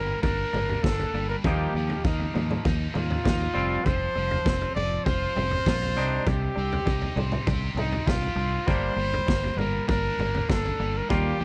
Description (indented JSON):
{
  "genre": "indie rock",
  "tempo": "99 BPM",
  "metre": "4/4",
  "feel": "straight",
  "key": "unclear",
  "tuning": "A4 = 442 Hz",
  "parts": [
    { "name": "bright trumpet", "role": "melody", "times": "0.0-11.4 s", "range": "Eb4 to D5", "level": "-32 LUFS", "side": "equal", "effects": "none" },
    { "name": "scooped high-gain guitar", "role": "riff", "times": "0.0-11.4 s", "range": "C3 to G4", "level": "-36 LUFS", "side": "equal", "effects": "distortion, lush chorus, tape echo" },
    { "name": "twangy electric guitar", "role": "riff", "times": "0.0-11.4 s", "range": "F3 to F4", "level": "-36 LUFS", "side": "equal", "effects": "spring reverb" },
    { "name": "growling fingered electric bass", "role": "bass", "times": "0.0-11.4 s", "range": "F1 to Eb2", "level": "-32 LUFS", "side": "equal", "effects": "overdrive" },
    { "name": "raw garage drum kit", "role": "drums", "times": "0.2-11.2 s", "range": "kick drum, snare drum, toms", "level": "-30 LUFS", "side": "equal", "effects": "none" }
  ],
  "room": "little or no reverb",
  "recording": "dry, close 1970s-style studio recording",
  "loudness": "-26 LUFS",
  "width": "mono",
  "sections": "0.0-11.4 A section",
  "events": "none",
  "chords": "0.0 Gm; 1.4 Ebadd9; 3.6 Fsus2; 6.0 Cmadd9; 8.7 Gm"
}